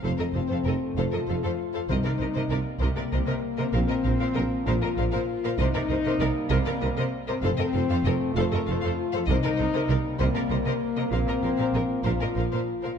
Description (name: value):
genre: cinematic, epic orchestral film score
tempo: 65 BPM (dotted quarters)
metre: 6/8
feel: straight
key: C dorian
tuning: A4 = 439 Hz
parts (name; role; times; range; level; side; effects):
- rich symphonic violin section; melody; 0.0-12.9 s; D5 to F5; -39 LUFS; left 6 dB; none
- warm symphonic violin section; second line; 0.0-12.9 s; Bb4 to C5; -34 LUFS; left 4 dB; none
- rich studio viola section; accompaniment; 0.0-12.9 s; A4 to Bb4; -35 LUFS; right 1 dB; none
- mellow French horn section; sustained chords; 0.0-13.0 s; Bb3 to F4; -29 LUFS; left 6 dB; none
- warm trombone section; sustained chords; 0.0-13.0 s; F3 to Bb3; -36 LUFS; right 3 dB; none
- bright symphonic cello section; bass; 0.0-12.9 s; F2 to C3; -32 LUFS; right 3 dB; none
- mellow tuba; bass; 0.0-12.4 s; F1 to C2; -33 LUFS; right 3 dB; none
- rich chamber double bass section; bass; 0.0-12.4 s; F1 to C2; -30 LUFS; right 3 dB; none
- timpani; percussion; 1.9-2.8, 9.3-10.2 s; C3; -33 LUFS; left 1 dB; none
room: moderate scoring stage reverb, RT60 1.6 s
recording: dark, warm production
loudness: -23 LUFS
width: side -7 dB against mid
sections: 0.0-13.0 A section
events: none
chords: 0.0 F; 1.9 Cm7; 3.7 Bbsus2; 5.6 Cm7; 7.4 F; 9.3 Cm7; 11.1 Bbsus2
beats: | 0.03 0.97 | 1.89 2.81 | 3.73 4.67 | 5.59 6.51 | 7.42 8.36 | 9.28 10.20 | 11.11 12.05